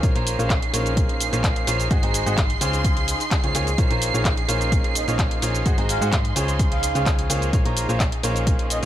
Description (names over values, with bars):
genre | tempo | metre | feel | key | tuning
piano house | 128 BPM | 4/4 | straight | Bb minor | A4 = 438 Hz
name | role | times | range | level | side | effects
analog string pad | sustained chords | 0.0-8.9 s | C7 | -30 LUFS | right 8 dB | ensemble chorus, sidechain pumping
clear baby grand piano | riff | 0.0-8.9 s | Db3 to Bb5 | -27 LUFS | left 1 dB | sidechain pumping, ping-pong delay
solid FM bass | bass | 0.0-8.9 s | Ab1 to Ab2 | -26 LUFS | equal | sidechain pumping
electronic kick drum | drums | 0.0-8.6 s | none | -22 LUFS | equal | none
house drum kit | drums | 0.0-8.9 s | cabasa, handclaps, hi-hat | -27 LUFS | equal | none
warm studio string section | texture | 0.0-8.9 s | Db4 to C6 | -31 LUFS | equal | sidechain pumping
breathy flute-like synth lead | melody | 5.0-8.9 s | Eb5 to F5 | -30 LUFS | right 4 dB | lush chorus, ping-pong delay
room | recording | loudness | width
little or no reverb | none | -19 LUFS | side -12 dB against mid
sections
0.0-8.9 A section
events
none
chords
0.0 Bbmadd9; 1.9 Ab7; 2.6 Dbmaj7; 3.8 Bbmadd9; 5.7 Ab7; 6.4 Dbmaj7; 7.5 Bbmadd9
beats
| 0.03 0.50 0.97 1.44 | 1.91 2.38 2.84 3.31 | 3.78 4.25 4.72 5.19 | 5.66 6.13 6.59 7.06 | 7.53 8.00 8.47